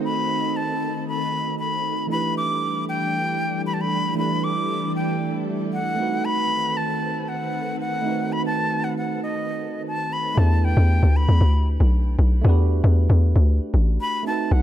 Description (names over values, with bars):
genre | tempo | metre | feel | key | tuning
amapiano | 116 BPM | 4/4 | straight | E minor | A4 = 439 Hz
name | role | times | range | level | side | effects
jazz flute | melody | 0.0-14.6 s | D#5 to D6 | -26 LUFS | left 2 dB | tape echo
tine electric piano | accompaniment | 0.0-14.6 s | E3 to C5 | -28 LUFS | right 5 dB | lush chorus
soft string machine | sustained chords | 0.0-10.3 s | D#3 to D#5 | -29 LUFS | left 1 dB | ensemble chorus
hollow log drum bass | bass | 10.4-14.6 s | A1 to E2 | -16 LUFS | equal | none
room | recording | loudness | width
digital ambience | none | -20 LUFS | side -12 dB against mid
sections
0.0-10.4 A section; 10.4-14.6 B section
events
drop 10.4-14.6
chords
0.0 B7b9; 2.1 Em7; 6.0 B7b9; 10.4 Em11